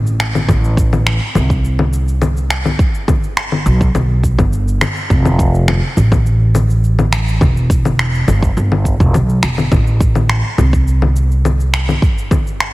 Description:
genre	sunset chillout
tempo	104 BPM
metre	4/4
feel	straight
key	A minor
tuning	A4 = 440 Hz
part	upright bass	bass	0.0-12.7 s	E1 to C2	-14 LUFS	equal	none
part	electronic shaker, finger snaps and congas	drums	0.1-12.7 s	none	-18 LUFS	left 2 dB	none
part	electronic kick drum	drums	0.5-12.4 s	none	-15 LUFS	equal	none
room	little or no reverb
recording	heavily compressed radio sound, multiband compression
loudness	-11 LUFS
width	side -19 dB against mid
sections	0.5-12.7 A section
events	none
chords	none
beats	| 0.49 1.06 1.64 2.22 | 2.79 3.37 3.95 4.53 | 5.10 5.68 6.26 6.83 | 7.41 7.99 8.56 9.14 | 9.72 10.29 10.87 11.45 | 12.03 12.60

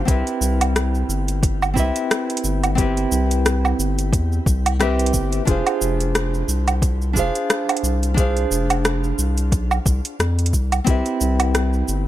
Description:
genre	sunset chillout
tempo	89 BPM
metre	4/4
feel	swing 56% on 16ths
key	C major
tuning	A4 = 435 Hz
part	nylon-string guitar	accompaniment	0.0-12.1 s	C4 to F5	-23 LUFS	moving between left 4 dB and right 3 dB	auto-pan, tape echo, shimmer reverb
part	round analog bass	bass	0.0-12.1 s	F1 to F2	-20 LUFS	equal	none
part	electronic kick drum	drums	0.1-11.0 s	none	-19 LUFS	equal	overdrive
part	smooth R&B drum kit	drums	0.1-12.0 s	hi-hat, rim click, shaker, woodblock	-23 LUFS	right 2 dB	overdrive
room	light reverb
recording	none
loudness	-17 LUFS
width	side -14 dB against mid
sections	0.1-12.1 A section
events	none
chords	0.1 Cmaj7; 5.5 Fm6; 10.9 Cmaj7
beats	| 0.08 0.76 1.43 2.11 | 2.78 3.46 4.13 4.80 | 5.48 6.15 6.83 7.50 | 8.17 8.85 9.52 10.20 | 10.87 11.54

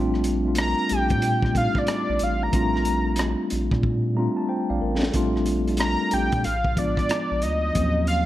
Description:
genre	R&B, neo-soul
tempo	92 BPM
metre	4/4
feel	swing 64% on 16ths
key	Bb major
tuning	A4 = 440 Hz
part	mellow tine electric piano	accompaniment	0.0-8.3 s	F3 to Bb5	-25 LUFS	left 1 dB	fast stereo tremolo
part	round analog bass	bass	0.0-8.3 s	A1 to Bb2	-26 LUFS	equal	none
part	crunchy breakbeat drum kit	drums	0.1-8.3 s	hi-hat, kick drum, rim click, snare drum	-28 LUFS	equal	none
part	fat analog lead	melody	0.6-8.3 s	D5 to Bb5	-25 LUFS	equal	slapback echo
room	studio reverb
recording	none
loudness	-20 LUFS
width	side -14 dB against mid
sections	0.0-5.1 A section; 5.1-8.3 A section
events	drum fill 3.8-5.1; tine electric piano fill 3.8-5.1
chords	0.0 Bbmaj7; 6.4 Bb7b9; 7.7 Ebm7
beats	0.57 1.23 1.88 | 2.53 3.18 3.84 4.49 | 5.14 5.79 6.44 7.10 | 7.75

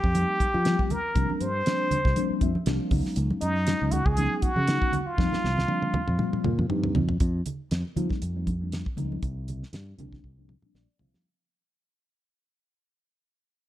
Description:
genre	electric jazz fusion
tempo	119 BPM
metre	4/4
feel	swing 55% on 16ths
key	unclear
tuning	A4 = 440 Hz
part	trumpet with plunger mute	melody	0.0-6.7 s	Eb4 to C5	-28 LUFS	equal	none
part	fingered electric bass	bass	0.0-11.1 s	Bb1 to F3	-28 LUFS	equal	none
part	damped 70s drum kit	drums	0.0-11.2 s	hi-hat, kick drum, snare drum, toms	-29 LUFS	equal	none
part	mellow tine electric piano	accompaniment	0.1-11.3 s	F3 to F5	-31 LUFS	left 2 dB	phaser
part	congas	percussion	0.2-11.2 s	none	-32 LUFS	right 2 dB	none
room	light reverb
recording	dark, warm production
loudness	-24 LUFS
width	side -13 dB against mid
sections	0.0-7.2 A section; 7.2-11.3 B section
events	tine electric piano fill 2.2-3.2, 10.5-11.3; drum fill 5.2-7.2, 10.2-11.3; fade-out 7.2-11.3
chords	0.0 F9sus4; 1.2 C9sus4; 2.9 Db9sus4; 5.2 F9sus4; 9.2 C9sus4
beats	0.15 0.65 | 1.16 1.66 2.16 2.66 | 3.17 3.67 4.17 4.68 | 5.18 5.68 6.19 6.69 | 7.20 7.71 8.21 8.72 | 9.22 9.73 10.24 10.74

